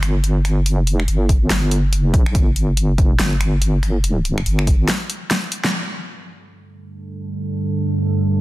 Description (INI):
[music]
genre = deep dubstep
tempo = 142 BPM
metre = 4/4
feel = swing 60% on 16ths, half-time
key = unclear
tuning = A4 = 440 Hz
[part]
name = deep soft wobble bass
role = bass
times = 0.0-4.9 s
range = G1 to Bb1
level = -17 LUFS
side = equal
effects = chorus
[part]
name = deep house drum kit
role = drums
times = 0.0-5.7 s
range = finger snaps, hi-hat, snare drum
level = -22 LUFS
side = equal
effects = low-pass filter on hats, low-pass filter on snare
[part]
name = electronic kick drum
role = drums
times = 1.3-4.8 s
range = none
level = -16 LUFS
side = equal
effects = overdrive
[part]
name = deep dark ambient pad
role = sustained chords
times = 7.0-8.4 s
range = G3 to A4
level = -20 LUFS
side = right 2 dB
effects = chorus, built-in reverb
[sound]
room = light reverb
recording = dense, heavily limited modern master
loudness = -16 LUFS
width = side -17 dB against mid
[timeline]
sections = 0.0-5.7 A section; 5.7-8.4 B section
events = break 4.9-5.7; drum fill 5.3-5.7; band accent 5.6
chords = 0.0 N.C.; 5.7 Gsus2